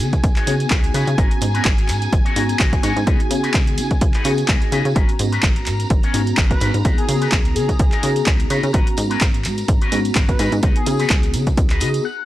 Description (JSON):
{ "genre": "filtered disco house", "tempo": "127 BPM", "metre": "4/4", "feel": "swing 55% on 16ths", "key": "G# minor", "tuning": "A4 = 441 Hz", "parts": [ { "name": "mellow tine electric piano", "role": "accompaniment", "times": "0.0-12.1 s", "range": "B3 to A#5", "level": "-25 LUFS", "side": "left 1 dB", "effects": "medium stereo tremolo, phaser, sidechain pumping, low-pass filter" }, { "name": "string machine, full ensemble", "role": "sustained chords", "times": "0.0-12.0 s", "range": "G#5 to A#5", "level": "-31 LUFS", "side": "equal", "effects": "ensemble chorus, sidechain pumping, low-pass filter" }, { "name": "electric guitar with an envelope filter", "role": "riff", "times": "0.0-12.2 s", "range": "C#4 to G#5", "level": "-27 LUFS", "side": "left 4 dB", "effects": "wide subtle chorus, sidechain pumping, low-pass filter" }, { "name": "plucky analog bass", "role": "bass", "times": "0.0-12.0 s", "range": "G#1 to C#3", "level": "-21 LUFS", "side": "equal", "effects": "sidechain pumping, low-pass filter" }, { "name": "punchy analog drum machine", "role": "drums", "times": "0.0-12.0 s", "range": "handclaps, hi-hat", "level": "-24 LUFS", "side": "equal", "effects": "none" }, { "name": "tambourine", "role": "percussion", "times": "0.0-12.0 s", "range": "none", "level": "-37 LUFS", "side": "right 5 dB", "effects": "sidechain pumping on perc, low-pass filter on perc" }, { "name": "electronic kick drum", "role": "drums", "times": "0.1-11.7 s", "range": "none", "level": "-18 LUFS", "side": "equal", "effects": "none" }, { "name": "analog synth brass", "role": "melody", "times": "6.5-11.1 s", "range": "G#4 to B4", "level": "-27 LUFS", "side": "left 2 dB", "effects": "chorus, cassette tape, sidechain pumping, low-pass filter, tape echo" } ], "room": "little or no reverb", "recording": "dry, gritty hardware recording, transformer saturation", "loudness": "-15 LUFS", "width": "side -14 dB against mid", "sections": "0.0-12.2 A section", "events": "clean electric guitar fill 4.3-5.0, 11.6-12.2; stop 12.0", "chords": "0.0 C#9sus4; 1.2 G#m11; 3.1 C#9sus4; 5.0 G#m11; 6.8 C#9sus4; 8.7 G#m11; 10.6 C#9sus4" }